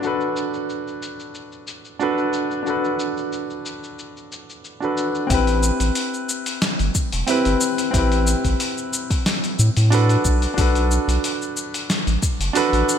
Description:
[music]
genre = sunset chillout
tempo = 91 BPM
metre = 4/4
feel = swing 53% on 16ths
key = A dorian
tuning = A4 = 440 Hz
[part]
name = warm grand piano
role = accompaniment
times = 0.0-13.0 s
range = C4 to B4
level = -22 LUFS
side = moving between left 4 dB and right 5 dB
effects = auto-pan, digital delay
[part]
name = dusty soul sampler-style drum kit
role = drums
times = 0.0-13.0 s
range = cabasa, hi-hat, snare drum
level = -25 LUFS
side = left 2 dB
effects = low-pass filter on perc, low-pass filter on hats, low-pass filter on snare, low-pass filter on room
[part]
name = round analog bass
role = bass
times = 5.3-12.8 s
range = E1 to A2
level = -19 LUFS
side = equal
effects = none
[part]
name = electronic kick drum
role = drums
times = 5.3-12.4 s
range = none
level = -22 LUFS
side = equal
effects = none
[sound]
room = moderate plate reverb, RT60 2.6 s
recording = bright 1980s-style digital production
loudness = -18 LUFS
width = side -8 dB against mid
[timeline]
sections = 0.0-5.3 A section; 5.3-13.0 B section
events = none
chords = 0.0 Bm7; 5.3 Am7; 10.2 Bm7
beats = | 0.03 0.69 1.34 2.00 | 2.66 3.32 3.98 4.64 | 5.30 5.96 6.62 7.28 | 7.94 8.60 9.26 9.92 | 10.57 11.23 11.89 12.55

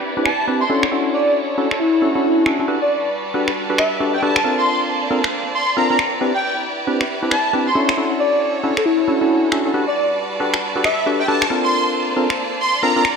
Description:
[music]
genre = UK garage, two-step garage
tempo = 136 BPM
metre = 4/4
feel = swing 61% on 16ths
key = G major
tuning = A4 = 437 Hz
[part]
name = rich studio violin section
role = sustained chords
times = 0.0-13.2 s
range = G3 to A5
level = -25 LUFS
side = right 1 dB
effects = low-pass filter
[part]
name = percussive organ stab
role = stabs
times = 0.2-13.0 s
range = C4 to B4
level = -20 LUFS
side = left 1 dB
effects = chorus, digital delay
[part]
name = airy dreamy lead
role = melody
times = 0.3-13.0 s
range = E4 to C6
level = -19 LUFS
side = equal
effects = chorus, cassette tape, digital delay
[part]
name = electronic finger snaps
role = drums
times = 0.3-13.2 s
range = none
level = -22 LUFS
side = right 1 dB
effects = low-pass filter on snare, gated reverb
[sound]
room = wet lush hall reverb, RT60 1.7 s, digital ambience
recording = bright 1980s-style digital production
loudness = -16 LUFS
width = side -5 dB against mid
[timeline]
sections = 0.0-13.2 A section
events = none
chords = 0.0 Cmaj9; 0.7 Dmaj9; 2.7 Gmaj9; 4.4 Bbmaj9; 6.0 Cmaj9; 7.8 Dmaj9; 9.7 Gmaj9; 11.5 Bbmaj9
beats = 0.03 0.47 | 0.92 1.36 1.80 2.24 | 2.68 3.12 3.56 4.00 | 4.45 4.89 5.33 5.77 | 6.21 6.65 7.09 7.53 | 7.97 8.42 8.86 9.30 | 9.74 10.18 10.62 11.06 | 11.50 11.95 12.39 12.83

